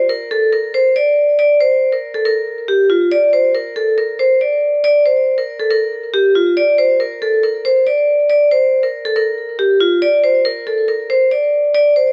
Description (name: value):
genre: hip hop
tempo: 139 BPM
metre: 4/4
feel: half-time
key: unclear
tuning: A4 = 440 Hz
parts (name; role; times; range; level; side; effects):
- vibraphone with hard mallets; solo; 0.0-12.1 s; F4 to D5; -15 LUFS; equal; low-pass filter
room: moderate concert hall reverb, RT60 2.3 s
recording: none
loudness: -15 LUFS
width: mono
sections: 0.0-4.8 A section; 4.8-12.1 B section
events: none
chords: none